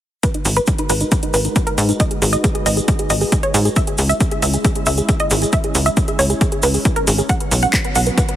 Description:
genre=uplifting trance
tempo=136 BPM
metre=4/4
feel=straight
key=G# minor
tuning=A4 = 439 Hz
part: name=wide unison pluck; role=melody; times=0.2-8.4 s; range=D#4 to F#5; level=-20 LUFS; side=right 1 dB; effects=sidechain pumping, ping-pong delay
part: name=supersaw pad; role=sustained chords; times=0.2-8.4 s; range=F#3 to B4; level=-26 LUFS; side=right 1 dB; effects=sidechain pumping, low-pass filter
part: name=electronic kick drum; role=drums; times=0.2-8.3 s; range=none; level=-19 LUFS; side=equal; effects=overdrive
part: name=house drum kit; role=drums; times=0.2-8.4 s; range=handclaps, hi-hat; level=-22 LUFS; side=equal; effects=overdrive
part: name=tube shaker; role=percussion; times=0.2-8.3 s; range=none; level=-25 LUFS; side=right 1 dB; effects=none
part: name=tight sequencer bass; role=bass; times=0.5-8.1 s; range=G#1 to G#2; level=-18 LUFS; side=equal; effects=sidechain pumping
room=digital ambience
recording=heavily compressed radio sound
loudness=-14 LUFS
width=side -12 dB against mid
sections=0.2-8.4 A section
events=filter sweep on supersaw synth 0.2-8.4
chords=0.2 G#m7; 3.8 C#m; 7.3 Bsus2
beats=| 0.24 0.68 1.12 1.56 | 2.00 2.44 2.88 3.32 | 3.77 4.21 4.65 5.09 | 5.53 5.97 6.41 6.85 | 7.29 7.74 8.18

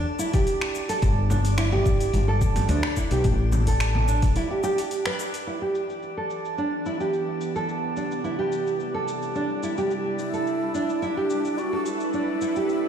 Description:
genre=organic downtempo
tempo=108 BPM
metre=4/4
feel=straight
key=E minor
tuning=A4 = 440 Hz
part: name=nylon-string guitar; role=arpeggios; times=0.0-12.9 s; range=D4 to B4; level=-27 LUFS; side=right 2 dB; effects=vintage 12-bit sampler grit, low-pass filter, digital delay, shimmer reverb
part: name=woody fretless electric bass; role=bass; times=0.0-4.4 s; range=G1 to D2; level=-22 LUFS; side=left 1 dB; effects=sidechain pumping
part: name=drifting glass-harmonics texture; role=texture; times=0.0-12.9 s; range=D4 to D5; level=-36 LUFS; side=left 1 dB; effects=chorus, built-in reverb, shimmer reverb
part: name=deep house drum kit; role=drums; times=0.2-12.8 s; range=cabasa, finger snaps, hi-hat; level=-34 LUFS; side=left 1 dB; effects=overdrive, low-pass filter on hats, low-pass filter on perc, low-pass filter on snare
part: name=electronic kick drum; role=drums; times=0.3-4.3 s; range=none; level=-24 LUFS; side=left 1 dB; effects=overdrive
part: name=frame drum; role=percussion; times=1.3-4.1 s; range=none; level=-32 LUFS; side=right 2 dB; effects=none
part: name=bowed-like drone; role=sustained chords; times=6.1-12.9 s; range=C3 to F#5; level=-30 LUFS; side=right 1 dB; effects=built-in reverb, sidechain pumping, shimmer reverb
part: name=breathy low ney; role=melody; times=10.2-12.9 s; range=D4 to F#4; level=-27 LUFS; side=right 1 dB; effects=digital delay, shimmer reverb
room=moderate lush hall reverb, RT60 2.0 s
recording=played on a big sound system in a bare room, stone room reverb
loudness=-22 LUFS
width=side -8 dB against mid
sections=0.0-5.5 A section; 5.5-12.9 B section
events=break 4.4-5.5; filter sweep on synth drone 5.5-12.9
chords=0.0 Cadd9 (rootless); 1.0 G5; 3.2 A5; 5.5 Em7; 7.7 Cadd9; 9.9 G; 12.1 A5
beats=0.47 | 1.02 1.58 2.13 2.69 | 3.25 3.80 4.36 4.91 | 5.47 6.02 6.58 7.13 | 7.69 8.24 8.80 9.36 | 9.91 10.47 11.02 11.58 | 12.13 12.69

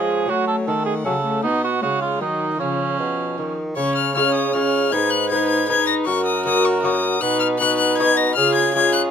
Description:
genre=classical, renaissance-style consort dance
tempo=156 BPM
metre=3/4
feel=straight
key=Db mixolydian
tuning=A4 = 440 Hz
part: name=warm violin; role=melody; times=0.0-9.0 s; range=Db5 to Bb6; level=-22 LUFS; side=left 7 dB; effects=none
part: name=mellow cor anglais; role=second line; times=0.0-9.1 s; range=Db4 to Db5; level=-23 LUFS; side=right 6 dB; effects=none
part: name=lute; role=accompaniment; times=0.0-9.1 s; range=Gb2 to Eb5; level=-27 LUFS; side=left 1 dB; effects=none
part: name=warm viola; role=accompaniment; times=0.0-9.1 s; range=F3 to Gb4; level=-25 LUFS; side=left 4 dB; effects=none
part: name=clear bassoon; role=bass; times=0.0-9.1 s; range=Gb2 to Gb3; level=-25 LUFS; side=right 1 dB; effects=none
room=little or no reverb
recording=close, detailed microphones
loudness=-17 LUFS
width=side -7 dB against mid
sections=0.0-3.8 A section; 3.8-9.1 A section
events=none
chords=0.3 Gbm; 1.4 Cb; 2.6 Db; 4.9 Abm; 6.1 Gb; 7.2 Cb; 8.4 Db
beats=| 0.29 0.67 1.05 | 1.44 1.82 2.21 | 2.60 2.99 3.38 | 3.77 4.15 4.54 | 4.92 5.30 5.69 | 6.07 6.46 6.84 | 7.22 7.60 7.99 | 8.37 8.75

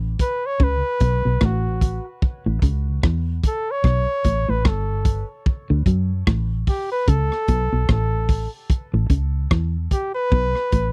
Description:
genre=roots reggae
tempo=74 BPM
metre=4/4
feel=swing 58% on 16ths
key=A mixolydian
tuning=A4 = 440 Hz
part: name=clean electric guitar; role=riff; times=0.0-10.9 s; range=G2 to F#3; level=-28 LUFS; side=equal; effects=none
part: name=vintage muted fingered electric bass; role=bass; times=0.0-10.9 s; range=G1 to F#2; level=-24 LUFS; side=equal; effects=none
part: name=clear flugelhorn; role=melody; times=0.2-10.9 s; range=F#4 to C#5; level=-27 LUFS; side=equal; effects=none
part: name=crunchy breakbeat drum kit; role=drums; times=0.2-10.9 s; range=hi-hat, kick drum, rim click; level=-21 LUFS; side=equal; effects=none
room=little or no reverb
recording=dry, close 1970s-style studio recording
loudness=-21 LUFS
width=mono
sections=0.0-10.9 A section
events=none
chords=0.0 D6 (rootless); 2.2 A7; 5.5 D6 (rootless); 8.7 A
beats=0.60 1.41 | 2.22 3.03 3.84 4.65 | 5.46 6.27 7.08 7.89 | 8.70 9.51 10.32

